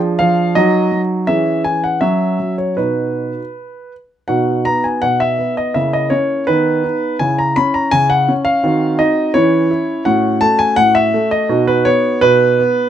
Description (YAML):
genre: classical-period piano sonatina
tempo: 83 BPM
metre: 2/4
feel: rubato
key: B major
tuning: A4 = 439 Hz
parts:
  - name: warm grand piano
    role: solo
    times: 0.0-12.9 s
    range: A2 to B5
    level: -13 LUFS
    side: equal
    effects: none
room: little or no reverb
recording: close, detailed microphones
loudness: -12 LUFS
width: side -10 dB against mid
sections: 0.0-4.3 A section; 4.3-12.9 A section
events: none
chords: 0.0 Ddim/F; 0.6 D#m/F#; 1.3 C#m/E; 2.0 F#5; 2.8 B; 5.8 A#dim/C#; 6.5 B/D#; 7.2 C#m; 8.6 Cdim/Eb; 9.4 C#m/E; 10.1 F#m/A; 11.5 B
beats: 0.57 | 1.29 2.02 | 2.78 3.54 | 4.30 5.03 | 5.76 6.49 | 7.20 7.93 | 8.64 9.35 | 10.06 10.78 | 11.50 12.23